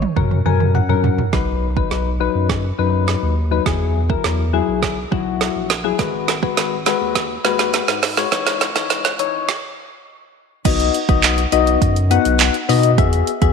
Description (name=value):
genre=dance-pop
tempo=103 BPM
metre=4/4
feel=straight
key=B major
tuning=A4 = 440 Hz
part: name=soft electric-piano-like synth keys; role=accompaniment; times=0.0-13.5 s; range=E3 to G#5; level=-19 LUFS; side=left 10 dB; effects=chorus, sidechain pumping
part: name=saturated sub bass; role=bass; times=0.0-13.5 s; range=G#1 to B2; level=-20 LUFS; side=equal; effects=sidechain pumping
part: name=deep house drum kit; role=drums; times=0.0-13.5 s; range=crash cymbal, handclaps, hi-hat, kick drum, snare drum, toms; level=-19 LUFS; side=right 5 dB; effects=none
room=moderate echo chamber reverb, RT60 2.1 s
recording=1960s-style stereo, high-pass filter, lossy compression artefacts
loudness=-15 LUFS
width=side -6 dB against mid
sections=0.0-1.3 A section; 1.3-10.7 B section; 10.7-13.5 C section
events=drum fill 0.0-1.3, 1.3-9.5; synth keys fill 0.2-1.3; build-up 1.3-10.7; filter sweep 1.3-10.7; stop 9.5-10.7; drop 10.7-13.5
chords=0.2 F#; 1.3 B; 3.7 Eadd9; 6.0 G#m7; 8.3 C#madd9; 10.7 B; 13.0 Eadd9